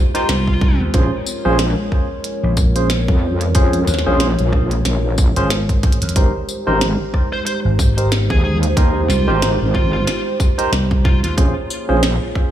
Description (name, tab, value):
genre	glitch hop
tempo	92 BPM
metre	4/4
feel	swing 57% on 16ths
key	Bb dorian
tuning	A4 = 439 Hz
part	dark analog pad	sustained chords	0.0-12.5 s	Ab3 to Db5	-24 LUFS	right 1 dB	chorus, sidechain pumping
part	barky tine electric piano	stabs	0.1-12.0 s	Db4 to C5	-22 LUFS	right 1 dB	wide subtle chorus, sidechain pumping, tape echo
part	glitchy drum kit	drums	0.1-12.5 s	hi-hat, rim click, snare drum, tambourine	-24 LUFS	right 1 dB	small room ambience
part	fuzz lead guitar	melody	0.2-0.8, 7.3-11.3 s	F4 to C5	-27 LUFS	equal	distortion, tape echo
part	vintage slap bass	bass	0.3-11.4 s	Ab1 to F2	-17 LUFS	equal	none
part	electronic kick drum	drums	0.5-12.5 s	none	-15 LUFS	equal	small room ambience
part	wobble bass	bass	0.9-12.2 s	Ab1 to F2	-17 LUFS	equal	chorus, overdrive
room	light reverb, digital ambience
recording	small room reverb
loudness	-14 LUFS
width	side -11 dB against mid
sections	0.0-12.5 A section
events	drum fill 5.8-6.2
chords	0.0 Abmaj7; 0.9 Bbm7; 6.2 Abmaj7; 11.4 Bbm7